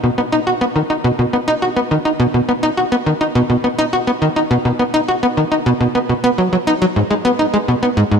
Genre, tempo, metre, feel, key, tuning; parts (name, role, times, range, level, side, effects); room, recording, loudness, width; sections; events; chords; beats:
ambient; 104 BPM; 4/4; straight; A4 = 441 Hz
tight sequencer bass; solo; 0.0-8.2 s; G#2 to F#4; -14 LUFS; equal; lush chorus, ping-pong delay
moderate lush hall reverb, RT60 2.9 s; -14 LUFS; side -6 dB against mid
0.0-8.2 A section
| 0.03 0.61 1.19 1.76 | 2.34 2.92 3.50 4.07 | 4.65 5.23 5.80 6.38 | 6.96 7.53 8.11